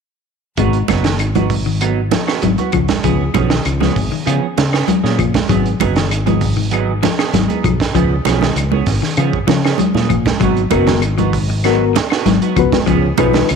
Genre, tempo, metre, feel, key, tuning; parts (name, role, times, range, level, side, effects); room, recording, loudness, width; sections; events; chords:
afrobeat; 98 BPM; 4/4; straight; G# dorian; A4 = 440 Hz
clean electric guitar; arpeggios; 0.6-13.6 s; D#3 to G#3; -20 LUFS; left 12 dB
semi-hollow electric guitar; stabs; 0.6-13.4 s; E#3 to G#4; -21 LUFS; right 10 dB; analog chorus
fingered electric bass; bass; 0.6-13.6 s; F#1 to C#3; -18 LUFS; left 1 dB
crunchy breakbeat drum kit; drums; 0.6-13.6 s; hi-hat, kick drum, snare drum; -19 LUFS; right 4 dB
claves; percussion; 0.9-13.6 s; -28 LUFS; left 13 dB
congas; percussion; 0.9-13.5 s; -21 LUFS; right 12 dB
mellow reed electric piano; accompaniment; 10.7-13.5 s; B3 to B4; -18 LUFS; left 13 dB; fast tremolo
moderate echo chamber reverb, RT60 2.3 s; 1960s-style stereo with parts hard left and right; -13 LUFS; side -6 dB against mid
0.6-13.6 A section
0.6 G#m7; 3.0 C#7; 5.5 G#m7; 8.0 C#7; 10.4 G#m7; 12.9 C#7